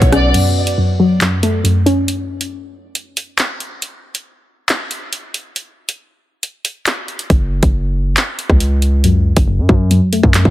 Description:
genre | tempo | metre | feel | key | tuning
hip hop, drill | 138 BPM | 4/4 | half-time | F# minor | A4 = 440 Hz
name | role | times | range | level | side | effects
warbly dusty pluck | accompaniment | 0.0-2.1, 9.0-10.5 s | F#2 to C#4 | -14 LUFS | left 1 dB | chorus, low-pass filter
hard-hitting 808-style bass | bass | 0.0-0.3, 7.3-10.5 s | F#1 to F#2 | -14 LUFS | equal | none
drill drum kit | drums | 0.0-10.5 s | crash cymbal, handclaps, hi-hat, kick drum, rim click | -16 LUFS | equal | none
room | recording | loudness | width
little or no reverb | heavily compressed radio sound, multiband compression | -13 LUFS | side -15 dB against mid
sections
0.3-10.5 A section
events
break 0.3-9.0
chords
0.3 F#m; 3.8 N.C.; 7.3 F#5

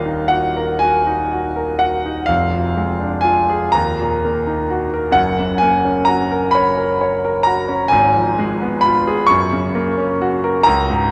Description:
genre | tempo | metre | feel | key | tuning
classical, romantic nocturne for solo piano | 43 BPM (dotted quarters) | 6/8 | uneven beats, rubato | unclear | A4 = 440 Hz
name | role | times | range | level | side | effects
clear concert grand piano | solo | 0.0-11.1 s | Eb1 to Db6 | -17 LUFS | equal | none
room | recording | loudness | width
wet cathedral reverb, RT60 4.4 s | recorded in a church or concert hall | -17 LUFS | mono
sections
0.0-11.1 A section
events
none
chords
0.0 Ebm; 2.3 Ddim/F; 3.7 Ebm; 5.2 Gb; 7.9 Fdim/Ab; 9.3 Gb

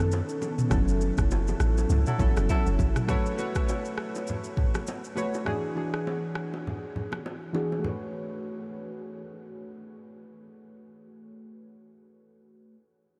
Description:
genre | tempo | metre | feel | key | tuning
afrobeats | 101 BPM | 4/4 | swing 58% on 16ths | A major | A4 = 442 Hz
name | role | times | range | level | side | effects
warm analog keys | accompaniment | 0.0-12.7 s | D#3 to C#5 | -35 LUFS | equal | chorus, low-pass filter
glassy FM pad | sustained chords | 0.0-3.1 s | D#3 to A4 | -41 LUFS | equal | none
deep log drum bass | bass | 0.0-2.9 s | F#1 to F#2 | -28 LUFS | equal | none
afro-pop drum kit | drums | 0.0-7.2 s | kick drum, rim click, shaker, toms | -32 LUFS | equal | none
bongos and congas | percussion | 0.1-8.1 s | none | -40 LUFS | equal | none
dark horn section | second line | 2.1-2.7 s | F#3 to A4 | -41 LUFS | equal | diffuse ambient delay
room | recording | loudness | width
moderate huge ambient reverb, RT60 8.3 s | dreamy mix soaked in reverb | -28 LUFS | mono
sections
0.0-3.1 A section; 3.1-7.8 B section; 7.8-10.2 C section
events
band accent 0.7-3.1; filter sweep on synth keys 3.1-7.8; kick muted 6.7-7.8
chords
0.0 B7; 0.7 F#m7; 3.1 A69; 5.5 E9; 7.8 A69

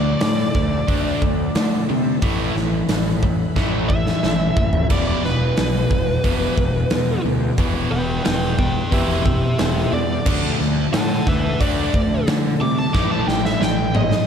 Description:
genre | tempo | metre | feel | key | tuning
hard rock | 90 BPM | 4/4 | straight | E minor | A4 = 440 Hz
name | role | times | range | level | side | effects
bluesy overdriven lead guitar | melody | 0.0-14.3 s | G4 to D6 | -24 LUFS | equal | distortion, slapback echo
overdriven tonewheel organ | sustained chords | 0.0-14.3 s | E3 to E5 | -35 LUFS | right 1 dB | none
crunchy overdriven guitar | riff | 0.0-14.2 s | E2 to D4 | -24 LUFS | left 8 dB | none
distorted electric guitar | riff | 0.0-14.3 s | E2 to D4 | -25 LUFS | right 9 dB | overdrive
fuzz picked electric bass | bass | 0.0-14.1 s | E1 to D3 | -25 LUFS | equal | overdrive
big rock drum kit | drums | 0.2-14.3 s | crash cymbal, hi-hat, kick drum, snare drum, splash cymbal, toms | -21 LUFS | equal | none
room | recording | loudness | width
moderate lush hall reverb, RT60 2.5 s | big arena sound | -17 LUFS | side -7 dB against mid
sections
0.0-14.3 A section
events
lead electric guitar solo 0.0-14.3; drum fill 3.6-4.9, 12.9-14.3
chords
0.0 D5; 2.2 A5; 4.9 Em; 10.3 D5; 12.9 A5

